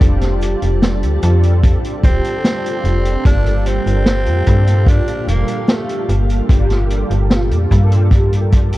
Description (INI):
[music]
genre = vaporwave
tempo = 74 BPM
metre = 4/4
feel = straight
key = unclear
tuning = A4 = 440 Hz
[part]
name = mellow synth brass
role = accompaniment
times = 0.0-8.8 s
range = Bb2 to A4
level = -22 LUFS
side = right 1 dB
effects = ensemble chorus, analog delay
[part]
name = soft string machine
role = sustained chords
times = 0.0-8.8 s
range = G4 to A5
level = -28 LUFS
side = equal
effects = ensemble chorus
[part]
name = slap-like FM bass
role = bass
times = 0.0-8.8 s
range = D1 to G2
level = -14 LUFS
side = equal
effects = none
[part]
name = kick drum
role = drums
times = 0.0-8.7 s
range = none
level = -14 LUFS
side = equal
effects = none
[part]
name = vintage drum kit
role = drums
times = 0.0-8.8 s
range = cabasa, hi-hat, snare drum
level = -21 LUFS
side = equal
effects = none
[part]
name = growling tenor saxophone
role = melody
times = 2.0-6.1 s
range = A3 to D4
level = -24 LUFS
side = equal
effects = tape echo
[sound]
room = little or no reverb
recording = dark, warm production, cassette tape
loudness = -12 LUFS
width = side -17 dB against mid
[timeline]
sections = 0.0-8.8 A section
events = none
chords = 0.0 F69; 3.3 Gm7